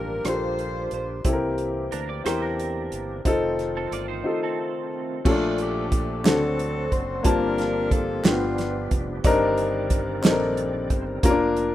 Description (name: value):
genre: slow gospel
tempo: 60 BPM (dotted quarters)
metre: 6/8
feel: straight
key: Bb major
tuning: A4 = 440 Hz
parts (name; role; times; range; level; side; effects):
- growling alto saxophone; melody; 0.0-1.1 s; Bb4 to C5; -34 LUFS; right 4 dB; none
- warm saxophone section; melody; 0.0-1.2, 5.3-9.2 s; A3 to C5; -30 LUFS; left 2 dB; none
- warm baby grand piano; accompaniment; 0.0-11.7 s; G2 to A5; -24 LUFS; left 2 dB; none
- bright tonewheel organ; sustained chords; 0.0-11.7 s; Eb3 to D5; -36 LUFS; right 4 dB; fast rotary speaker, overdrive, chorus vibrato
- fingered electric bass; bass; 0.0-11.7 s; F1 to E2; -33 LUFS; right 1 dB; none
- warm soul drum kit; drums; 0.2-11.7 s; crash cymbal, hi-hat, kick drum, rim click, snare drum; -23 LUFS; right 1 dB; none
- clean electric guitar; second line; 1.9-5.2 s; C4 to D5; -34 LUFS; right 7 dB; ensemble chorus
- group handclap; percussion; 6.2-10.5 s; none; -37 LUFS; right 3 dB; none
room: light reverb, small room ambience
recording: rough home demo mix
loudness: -22 LUFS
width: side -13 dB against mid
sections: 0.0-5.3 A section; 5.3-11.7 B section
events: break 4.3-5.3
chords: 0.0 Gm7; 1.2 C7; 3.3 F7; 5.3 Bbmaj7; 6.2 D7; 7.2 Gm11; 8.2 G7; 9.2 Cm9/G; 11.2 Bb/F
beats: 0.25 | 1.25 2.25 | 3.25 4.25 | 5.25 6.25 | 7.25 8.24 | 9.24 10.24 | 11.23